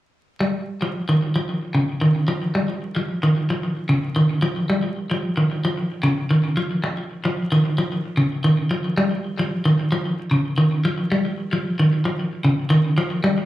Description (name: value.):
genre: afrobeat.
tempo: 112 BPM.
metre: 4/4.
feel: swing 55% on 16ths.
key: unclear.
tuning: A4 = 440 Hz.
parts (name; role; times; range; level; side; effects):
clean electric guitar; arpeggios; 0.4-13.4 s; Db3 to G3; -19 LUFS; equal; tape echo, slapback echo.
room: wet club reverb, RT60 0.8 s.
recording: live gig heard through the venue's PA, club reverb, vinyl crackle.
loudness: -19 LUFS.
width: side -15 dB against mid.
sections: 0.4-13.5 A section.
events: none.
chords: none.